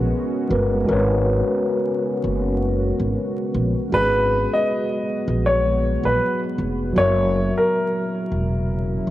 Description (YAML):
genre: lo-fi hip hop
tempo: 79 BPM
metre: 4/4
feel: swing 56% on 16ths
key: G# minor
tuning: A4 = 440 Hz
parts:
  - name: mellow tine electric piano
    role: accompaniment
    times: 0.0-9.1 s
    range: F#3 to E5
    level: -23 LUFS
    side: equal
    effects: medium stereo tremolo, cassette tape, low-pass filter
  - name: deep dark ambient pad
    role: sustained chords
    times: 0.0-9.1 s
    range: A#2 to F#4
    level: -28 LUFS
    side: equal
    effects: chorus, built-in reverb, low-pass filter, cassette tape
  - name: upright bass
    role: bass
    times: 0.0-9.1 s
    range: E1 to A#1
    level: -22 LUFS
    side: equal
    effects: none
  - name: warm upright piano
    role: melody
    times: 3.9-9.1 s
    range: A#4 to D#5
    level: -21 LUFS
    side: left 1 dB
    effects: low-pass filter, cassette tape
room: moderate lush hall reverb, RT60 2.8 s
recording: home recording on cassette, vinyl crackle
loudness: -18 LUFS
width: side -15 dB against mid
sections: 0.0-3.9 A section; 3.9-9.1 B section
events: none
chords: 0.0 G#m9; 0.9 G#m11; 3.9 G#m9; 7.0 F#7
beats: 0.12 | 0.88 1.64 2.40 3.16 | 3.92 4.68 5.43 6.20 | 6.95 7.71 8.47